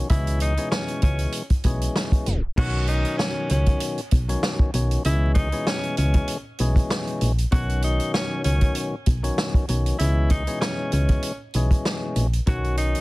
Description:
hip hop, boom-bap hip-hop; 97 BPM; 4/4; swing 54% on 16ths; C# minor; A4 = 442 Hz
percussive tonewheel organ; accompaniment; 0.0-13.0 s; B2 to C#4; -28 LUFS; left 2 dB; overdrive, cassette tape, high-pass filter, low-pass filter
solid FM bass; bass; 0.0-12.9 s; A#1 to C#2; -22 LUFS; equal
edgy tenor saxophone; melody; 0.1-13.0 s; C#4 to F#4; -30 LUFS; equal; high-pass filter, low-pass filter, tape echo
vintage drum kit; drums; 0.1-13.0 s; crash cymbal, hi-hat, kick drum, snare drum; -23 LUFS; equal
little or no reverb; dense, heavily limited modern master, vinyl crackle, tape stop; -20 LUFS; side -21 dB against mid
0.0-2.6 A section; 2.6-13.0 B section
tape stop 2.3-2.6
0.1 C#m7; 2.6 Badd9; 5.0 C#m7; 7.5 Badd9; 10.0 C#m7; 12.5 Badd9

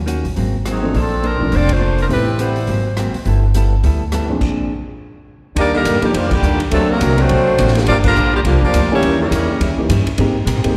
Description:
jazz, big band swing; 208 BPM; 4/4; swing 60% on 8ths; Eb major from 5.6 s; A4 = 442 Hz
upright bass; bass; 0.0-10.7 s; F1 to Bb2; -19 LUFS; equal
hollow-body jazz guitar; accompaniment; 0.1-10.8 s; G2 to C5; -26 LUFS; equal; slapback echo
swinging big-band drum kit; drums; 0.1-10.7 s; crash cymbal, hi-hat, kick drum, ride cymbal, rim click, snare drum; -27 LUFS; equal
edgy saxophone section; melody; 0.7-3.1, 5.6-9.7 s; Eb3 to D5; -21 LUFS; equal; slapback echo
warm upright piano; accompaniment; 0.8-2.3, 4.3-10.8 s; Bb2 to A4; -24 LUFS; equal; slapback echo
clear trombone section; second line; 5.6-9.7 s; Bb2 to D4; -22 LUFS; equal; slapback echo
light reverb; live gig heard through the venue's PA, recital hall reverb; -16 LUFS; mono
0.0-5.6 A section; 5.6-10.8 B section
band accent 1.7, 6.3, 8.0; stop 4.4-5.6
0.4 Ab9; 0.9 Bbmaj9; 2.1 Am9; 2.7 Ab9; 3.3 G69; 4.4 Bb7; 5.6 Ebmaj7; 6.7 D7b13; 7.9 Gm7; 9.0 Eb7b9; 10.2 Abmaj9

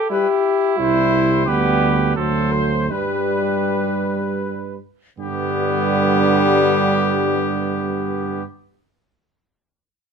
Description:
classical, brass quintet; 77-89 BPM; 3/4; rubato; G major; A4 = 441 Hz
clear flugelhorn; second line; 0.0-8.4 s; B3 to C5; -24 LUFS; right 6 dB
dark French horn; accompaniment; 0.0-8.4 s; G3 to A4; -21 LUFS; left 4 dB
clear trumpet; melody; 0.1-8.4 s; G4 to C5; -24 LUFS; left 6 dB
mellow trombone; accompaniment; 0.1-8.4 s; D3 to G3; -26 LUFS; right 5 dB
mellow tuba; bass; 0.8-8.4 s; C2 to G2; -22 LUFS; right 5 dB
light reverb; minimal, uncompressed stereo recording; -16 LUFS; side -6 dB against mid
0.0-5.2 A section; 5.2-9.8 B section
slowing down 0.0-5.2
0.0 Em; 0.8 C; 1.5 G/D; 2.2 D7; 2.9 G

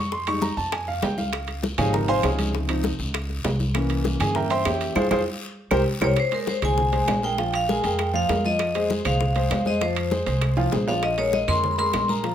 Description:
Afro-Cuban jazz; 198 BPM; 4/4; straight; F minor; A4 = 440 Hz
clear grand piano; accompaniment; 0.0-12.3 s; C3 to Db6; -25 LUFS; equal
upright bass; bass; 0.0-12.3 s; Ab1 to G2; -27 LUFS; equal
bongos; percussion; 0.1-12.3 s; -34 LUFS; left 9 dB
congas; percussion; 0.1-12.3 s; -30 LUFS; left 1 dB
guiro; percussion; 0.1-12.3 s; -39 LUFS; left 4 dB
claves; percussion; 0.3-12.1 s; -36 LUFS; right 4 dB
timbales; percussion; 0.3-12.3 s; -32 LUFS; right 5 dB
vibraphone with medium hard mallets; melody; 6.0-12.3 s; Bb4 to C6; -24 LUFS; left 1 dB; plate reverb
moderate large studio reverb, RT60 0.9 s; -21 LUFS; side -10 dB against mid
0.0-6.2 A section; 6.2-12.3 B section
grand piano solo 0.0-6.2; drum fill 5.0-6.2, 10.6-11.0; band accent 5.0-6.2
0.0 Fm9; 1.3 Dbmaj7; 3.7 C7b9; 5.0 Fm; 5.6 C5; 6.2 Abadd9; 7.4 Bb5; 8.6 Fm; 11.0 Bbsus2

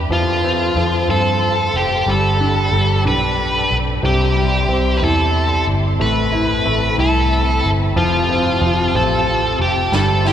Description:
six-eight pop ballad; 61 BPM (dotted quarters); 6/8; straight; A4 = 435 Hz
clear concert grand piano; accompaniment; 0.0-10.3 s; C3 to E4; -20 LUFS; equal
warm symphonic string section; sustained chords; 0.0-10.3 s; C4 to C6; -25 LUFS; left 2 dB
vintage muted fingered electric bass; bass; 0.0-10.3 s; F1 to G2; -19 LUFS; equal
high-gain lead guitar; melody; 0.1-10.3 s; F4 to B4; -18 LUFS; equal; distortion
snare drum; drums; 9.9-10.3 s; -23 LUFS; right 2 dB
wet cathedral reverb, RT60 7.5 s; recorded in a church or concert hall; -14 LUFS; side -9 dB against mid
0.0-10.3 A section
drum fill 9.9-10.3
0.1 F; 2.1 Gadd9; 4.0 Cadd9; 6.0 Amadd9; 8.0 Fadd9

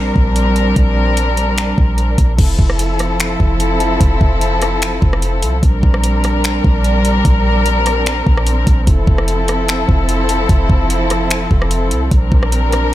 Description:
hip hop, atmospheric cloud-rap; 148 BPM; 4/4; half-time; F major; A4 = 440 Hz
muted chamber string section; sustained chords; 0.0-12.9 s; F3 to Bb4; -17 LUFS; left 1 dB; sidechain pumping
clean 808-style bass; bass; 0.0-12.9 s; F1 to C2; -16 LUFS; equal
smooth R&B drum kit; drums; 0.2-12.8 s; crash cymbal, finger snaps, hi-hat, kick drum, rim click; -16 LUFS; equal
digital ambience; -12 LUFS; side -14 dB against mid
0.0-2.4 A section; 2.4-12.9 B section
0.0 Bb69; 2.4 Fmaj7; 5.6 Bb69; 8.9 Fmaj7; 12.1 Bb69

